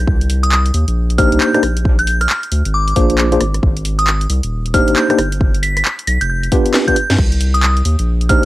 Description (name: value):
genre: UK garage, two-step garage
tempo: 135 BPM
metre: 4/4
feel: swing 62% on 16ths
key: C minor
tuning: A4 = 440 Hz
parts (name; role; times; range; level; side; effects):
- saturated sub bass; bass; 0.0-8.4 s; Eb1 to G2; -16 LUFS; equal; none
- electronic kick drum; drums; 0.1-8.4 s; none; -15 LUFS; equal; cassette tape
- house drum kit; drums; 0.2-8.4 s; crash cymbal, handclaps, hi-hat, rim click, snare drum; -20 LUFS; equal; cassette tape
- glassy synth bell; melody; 0.4-8.5 s; D6 to B6; -19 LUFS; equal; chorus, cassette tape, tape echo
- tine electric piano; stabs; 1.2-8.5 s; Bb3 to C5; -16 LUFS; left 1 dB; overdrive, fast stereo tremolo, low-pass filter, cassette tape, tape echo
room: light reverb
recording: home recording on cassette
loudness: -12 LUFS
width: side -17 dB against mid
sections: 0.0-8.5 A section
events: drum fill 6.7-7.2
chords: 0.1 Cm7; 1.6 Bb7; 3.6 Abmaj9#11; 5.4 G7; 7.2 Cm7